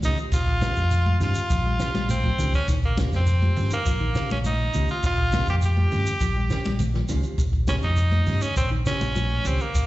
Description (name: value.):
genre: afrobeat.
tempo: 102 BPM.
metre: 4/4.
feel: straight.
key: Bb dorian.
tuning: A4 = 442 Hz.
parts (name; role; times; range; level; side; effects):
raspy tenor saxophone; melody; 0.0-9.9 s; Bb3 to G4; -27 LUFS; right 1 dB; plate reverb, slapback echo.
mellow electric guitar; arpeggios; 0.0-9.5 s; Db3 to G3; -33 LUFS; left 4 dB; none.
mellow electric guitar; stabs; 0.0-9.6 s; Db4 to C5; -38 LUFS; right 5 dB; warbly pitch drift, plate reverb, slapback echo, tape echo.
fingered electric bass; bass; 0.0-9.9 s; Bb1 to G2; -23 LUFS; equal; none.
compact cocktail drum kit; drums; 0.0-9.9 s; hi-hat, kick drum, snare drum; -27 LUFS; equal; none.
congas; percussion; 0.0-9.9 s; none; -31 LUFS; left 1 dB; slapback echo.
shekere; percussion; 0.0-9.9 s; none; -32 LUFS; right 1 dB; none.
room: light reverb.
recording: live gig heard through the venue's PA, recital hall reverb, nothing above 8.0 kHz.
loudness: -20 LUFS.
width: side -16 dB against mid.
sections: 0.0-9.9 A section.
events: none.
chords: 0.0 Bbm69.